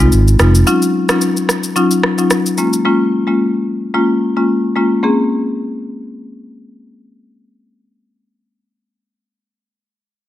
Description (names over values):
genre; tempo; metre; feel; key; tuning
afrobeats; 110 BPM; 4/4; swing 55% on 16ths; Bb minor; A4 = 438 Hz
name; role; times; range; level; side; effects
marimba with medium mallets; accompaniment; 0.0-9.7 s; Gb3 to Ab4; -14 LUFS; left 2 dB; none
fingered electric bass; bass; 0.0-0.6 s; F1 to Ab1; -9 LUFS; equal; none
electronic shaker and rim click; drums; 0.0-2.8 s; none; -18 LUFS; equal; none
room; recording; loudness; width
light reverb, digital ambience; none; -12 LUFS; side -13 dB against mid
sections
0.0-5.0 A section; 5.0-9.4 B section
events
none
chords
0.0 Fm7; 0.7 Ebm9; 2.6 Db6; 5.0 Bbm9